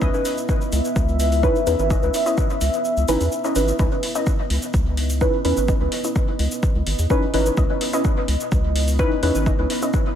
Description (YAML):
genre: dub techno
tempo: 127 BPM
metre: 4/4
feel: straight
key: C# minor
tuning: A4 = 440 Hz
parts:
  - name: deep dark ambient pad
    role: sustained chords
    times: 0.0-10.2 s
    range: B3 to E5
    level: -27 LUFS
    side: equal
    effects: chorus, built-in reverb, sidechain pumping
  - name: warbly dusty pluck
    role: riff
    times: 0.0-10.0 s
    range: C#4 to D#5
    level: -28 LUFS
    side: left 1 dB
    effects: chorus, cassette tape, sidechain pumping, dub echo
  - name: round analog bass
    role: bass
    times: 0.0-9.7 s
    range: G#1 to E2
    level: -21 LUFS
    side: equal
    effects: sidechain pumping
  - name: electronic kick drum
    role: drums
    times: 0.0-10.0 s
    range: none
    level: -21 LUFS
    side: equal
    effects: overdrive
  - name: electronic shaker and hi-hat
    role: drums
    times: 0.0-10.0 s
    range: none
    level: -31 LUFS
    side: equal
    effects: overdrive
  - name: deep mellow chord stab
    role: stabs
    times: 1.4-9.4 s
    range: C#4 to B4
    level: -24 LUFS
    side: equal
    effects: chorus, phaser, sidechain pumping, dub echo
room: light reverb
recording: none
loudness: -18 LUFS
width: side -9 dB against mid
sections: 0.0-3.8 A section; 3.8-10.2 A section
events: kick drops out 2.9-3.8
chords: 0.0 C#m9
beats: | 0.02 0.49 0.96 1.43 | 1.91 2.38 2.85 3.32 | 3.80 4.27 4.74 5.21 | 5.68 6.16 6.63 7.10 | 7.58 8.05 8.52 8.99 | 9.46 9.94